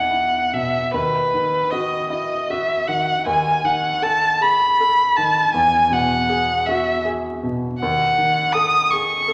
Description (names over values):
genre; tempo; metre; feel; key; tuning
classical, romantic duo for violin and grand piano; 53 BPM (dotted quarters); 6/8; rubato; E major; A4 = 440 Hz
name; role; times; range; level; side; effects
warm violin; melody; 0.0-9.3 s; B4 to D#6; -20 LUFS; equal; none
clear grand piano; accompaniment; 0.0-9.3 s; D#2 to A4; -28 LUFS; equal; none
room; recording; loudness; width
wet recital hall reverb, RT60 1.7 s; vinyl crackle; -19 LUFS; mono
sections
0.0-9.3 A section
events
none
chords
0.0 E5; 0.9 B/D#; 3.2 B7/D#; 5.5 E; 7.8 D#m7b5